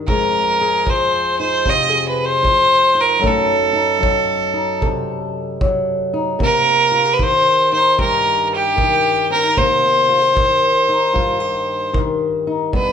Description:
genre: acoustic country blues, solo or duo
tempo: 76 BPM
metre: 4/4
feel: swing 66% on 8ths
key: C minor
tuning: A4 = 444 Hz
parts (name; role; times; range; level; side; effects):
- fingerpicked old ladder-braced acoustic guitar; accompaniment; 0.0-12.9 s; F2 to A4; -21 LUFS; left 3 dB; none
- clear fiddle; melody; 0.1-12.9 s; G4 to Eb5; -14 LUFS; equal; none
- kick drum; drums; 0.1-12.9 s; none; -22 LUFS; right 1 dB; none
room: moderate large studio reverb, RT60 1.3 s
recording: band playing live in one room, nothing above 10.5 kHz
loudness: -14 LUFS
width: side -7 dB against mid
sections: 0.0-12.9 A section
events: none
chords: 0.1 Fm7; 3.2 F#dim7; 6.4 Cm7

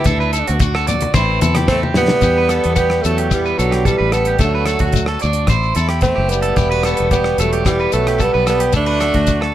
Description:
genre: highlife guitar band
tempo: 111 BPM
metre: 4/4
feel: straight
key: E minor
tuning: A4 = 440 Hz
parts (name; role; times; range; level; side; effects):
- breathy tenor saxophone; melody; 0.0-9.5 s; F#3 to E4; -18 LUFS; right 3 dB; none
- picked steel-string acoustic guitar; accompaniment; 0.0-9.5 s; E2 to F#4; -26 LUFS; left 5 dB; none
- electric guitar at the edge of break-up; arpeggios; 0.0-9.5 s; F#4 to D5; -21 LUFS; right 4 dB; tape echo
- damped 70s drum kit; drums; 0.0-9.5 s; hi-hat, kick drum, rim click, snare drum; -20 LUFS; equal; none
- fingered electric bass; bass; 0.1-9.5 s; E1 to E2; -19 LUFS; equal; none
- shekere; percussion; 0.1-9.4 s; none; -24 LUFS; left 6 dB; none
- congas; percussion; 0.9-2.2 s; none; -21 LUFS; left 3 dB; none
- clear alto saxophone; second line; 1.7-9.5 s; D3 to A3; -24 LUFS; left 7 dB; none
room: light reverb, small room ambience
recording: none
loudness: -13 LUFS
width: side -12 dB against mid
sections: 0.0-2.2 A section; 2.2-9.5 B section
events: tenor saxophone solo 0.0-2.2; drum fill 1.7-2.2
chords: 0.1 D; 1.1 Am; 2.2 Emadd9; 4.4 D; 5.5 Am; 6.6 Emadd9; 8.7 D

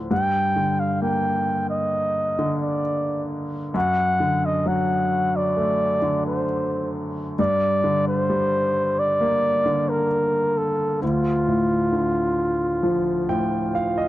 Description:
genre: pop ballad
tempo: 66 BPM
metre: 4/4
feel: straight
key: G minor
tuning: A4 = 440 Hz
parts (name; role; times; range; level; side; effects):
- warm concert grand piano; accompaniment; 0.0-14.1 s; D2 to G5; -23 LUFS; equal; none
- trumpet with bucket mute; melody; 0.1-14.1 s; F4 to G5; -22 LUFS; equal; tape echo
room: light reverb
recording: dry, close 1970s-style studio recording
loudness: -20 LUFS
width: side -15 dB against mid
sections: 0.0-14.1 A section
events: grand piano fill 12.8-14.1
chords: 0.1 Gm; 3.8 D/F#; 7.4 Gm; 11.0 Dm

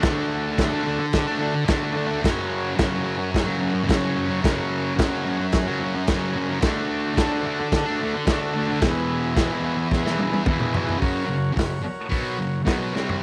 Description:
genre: garage rock duo or trio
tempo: 109 BPM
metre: 4/4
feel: straight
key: unclear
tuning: A4 = 440 Hz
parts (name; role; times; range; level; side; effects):
- combo organ; sustained chords; 0.0-13.2 s; C#4 to C#5; -31 LUFS; equal; none
- thick fuzz guitar; riff; 0.0-13.2 s; E2 to D4; -26 LUFS; equal; distortion
- crunchy breakbeat drum kit; drums; 0.0-13.2 s; crash cymbal, hi-hat, kick drum, snare drum, toms; -27 LUFS; equal; none
room: light reverb, small room ambience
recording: none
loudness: -23 LUFS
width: mono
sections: 0.0-11.0 A section; 11.0-13.2 B section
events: drum fill 9.9-11.0, 13.0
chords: 0.0 D; 2.2 F#; 6.6 D; 8.8 E; 11.0 F#

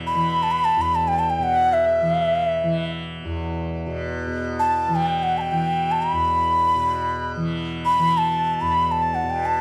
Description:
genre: indian classical, Hindustani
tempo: free time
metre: none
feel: none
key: E raga bhimpalasi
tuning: A4 = 440 Hz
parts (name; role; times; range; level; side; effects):
- tanpura; drone; 0.0-9.6 s; E2 to E3; -29 LUFS; equal; none
- mellow bansuri; melody; 0.1-9.6 s; E5 to B5; -22 LUFS; equal; none
- hand-pumped harmonium; second line; 0.2-9.6 s; E5 to B5; -33 LUFS; equal; none
room: studio reverb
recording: dry, close 1970s-style studio recording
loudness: -22 LUFS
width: mono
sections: 0.0-4.3 A section; 4.3-9.6 A section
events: none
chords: none

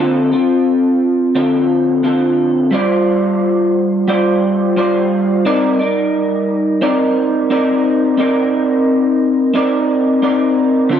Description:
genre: indie pop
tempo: 88 BPM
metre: 4/4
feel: straight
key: C dorian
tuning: A4 = 440 Hz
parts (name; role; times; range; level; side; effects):
- electric guitar through a small old amp; solo; 0.0-11.0 s; D3 to D5; -12 LUFS; equal; analog chorus, vibrato effect
room: moderate spring reverb, RT60 1.2 s, digital ambience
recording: dark, warm production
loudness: -12 LUFS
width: side -9 dB against mid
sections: 0.0-11.0 A section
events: none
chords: 0.0 Dm7; 2.7 G7sus4; 5.4 Cm9

